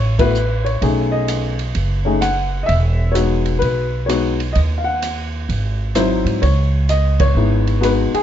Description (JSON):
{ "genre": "jazz piano trio", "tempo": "128 BPM", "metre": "4/4", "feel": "swing 66% on 8ths", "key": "C# minor", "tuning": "A4 = 440 Hz", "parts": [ { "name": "warm baby grand piano", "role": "melody", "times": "0.0-8.2 s", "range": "F#3 to F#5", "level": "-19 LUFS", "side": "left 3 dB", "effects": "plate reverb" }, { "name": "upright bass", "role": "bass", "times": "0.0-8.2 s", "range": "E1 to G#2", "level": "-18 LUFS", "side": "right 1 dB", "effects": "none" }, { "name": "open jazz drum kit", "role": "drums", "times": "0.2-8.2 s", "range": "hi-hat, kick drum, ride cymbal, rim click", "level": "-25 LUFS", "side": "right 3 dB", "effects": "none" } ], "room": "light reverb", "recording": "dark, warm production, nothing above 7.6 kHz", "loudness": "-15 LUFS", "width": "side -10 dB against mid", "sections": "0.0-8.2 A section", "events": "band accent 0.1, 7.1", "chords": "0.0 D5 (rootless); 0.8 B13; 2.7 Emaj9; 4.6 D#m; 5.5 G#7b13; 6.4 C#m7" }